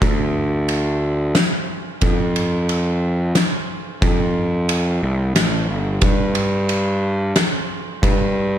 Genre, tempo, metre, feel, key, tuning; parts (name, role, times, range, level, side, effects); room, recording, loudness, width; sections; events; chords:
post-rock; 90 BPM; 3/4; straight; A4 = 441 Hz
fuzz picked electric bass; bass; 0.0-8.6 s; G1 to G2; -19 LUFS; equal; overdrive
oversized low-tuned drum kit; drums; 0.0-8.2 s; kick drum, ride cymbal, snare drum; -20 LUFS; equal
little or no reverb; -17 LUFS; side -10 dB against mid
0.0-8.6 A section